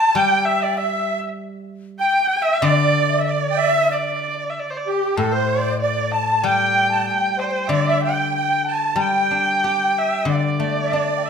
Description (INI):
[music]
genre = chinese traditional, Chinese chamber ensemble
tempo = 94 BPM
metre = 2/4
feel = rubato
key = D shang mode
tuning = A4 = 440 Hz
[part]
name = dark erhu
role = melody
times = 0.0-11.3 s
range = G4 to A5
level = -21 LUFS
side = equal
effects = none
[part]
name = breathy xiao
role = second line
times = 0.0-11.3 s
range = G4 to A5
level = -25 LUFS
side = left 5 dB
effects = none
[part]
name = musette accordion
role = second line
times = 0.0-11.3 s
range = G4 to A5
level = -24 LUFS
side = right 9 dB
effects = none
[part]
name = guzheng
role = accompaniment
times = 0.1-11.3 s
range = A2 to G4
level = -24 LUFS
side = left 3 dB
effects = none
[sound]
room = moderate recital hall reverb, RT60 1.4 s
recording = minimal, uncompressed stereo recording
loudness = -17 LUFS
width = side -6 dB against mid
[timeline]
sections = 0.0-3.9 A section; 3.9-11.3 B section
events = none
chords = none